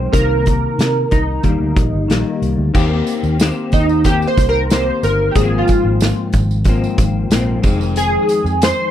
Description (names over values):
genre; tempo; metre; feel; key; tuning
indie pop, bedroom pop; 92 BPM; 4/4; straight; Eb major; A4 = 440 Hz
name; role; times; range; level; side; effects
chorused retro synth keys; melody; 0.0-8.9 s; Eb4 to C5; -17 LUFS; right 1 dB; ensemble chorus
semi-hollow electric guitar; accompaniment; 0.0-8.9 s; F2 to G4; -20 LUFS; left 4 dB; ensemble chorus, warbly pitch drift
vintage muted fingered electric bass; bass; 0.0-8.7 s; F1 to C3; -18 LUFS; equal; none
loose indie drum kit; drums; 0.1-8.8 s; crash cymbal, hi-hat, kick drum, snare drum; -17 LUFS; equal; none
tambourine; percussion; 2.8-8.8 s; none; -35 LUFS; right 14 dB; none
room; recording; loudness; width
small room ambience; none; -13 LUFS; side -11 dB against mid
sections
0.0-2.7 A section; 2.7-8.9 B section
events
synth keys solo 2.7-8.9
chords
0.1 Cm7; 1.4 Ebmaj7; 2.7 Eb6; 5.4 Ab69; 7.6 Fm7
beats
| 0.13 0.79 1.44 2.09 | 2.75 3.40 4.05 4.71 | 5.36 6.01 6.67 7.32 | 7.97 8.62